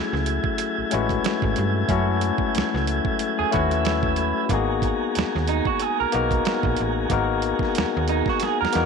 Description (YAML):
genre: R&B, neo-soul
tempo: 92 BPM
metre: 4/4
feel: swing 56% on 16ths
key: unclear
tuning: A4 = 441 Hz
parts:
  - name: barky tine electric piano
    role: accompaniment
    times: 0.0-8.9 s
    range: G#3 to B4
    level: -24 LUFS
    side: left 11 dB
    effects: overdrive
  - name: tonewheel organ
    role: sustained chords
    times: 0.0-8.9 s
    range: F#3 to G#5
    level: -28 LUFS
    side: right 2 dB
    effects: fast rotary speaker
  - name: slap-like FM bass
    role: bass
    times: 0.1-8.9 s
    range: G#1 to G2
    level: -26 LUFS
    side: right 2 dB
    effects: none
  - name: dusty soul sampler-style drum kit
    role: drums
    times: 0.1-8.9 s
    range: hi-hat, kick drum, snare drum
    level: -27 LUFS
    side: right 5 dB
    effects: none
  - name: electric guitar through a small old amp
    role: second line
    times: 3.4-8.9 s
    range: D#4 to A#4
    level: -25 LUFS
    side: right 14 dB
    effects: none
room: light reverb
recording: 1960s-style stereo with parts hard left and right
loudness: -20 LUFS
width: side -5 dB against mid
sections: 0.0-8.9 A section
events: drum fill 8.4-8.9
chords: 0.0 F#m9; 4.5 G#m9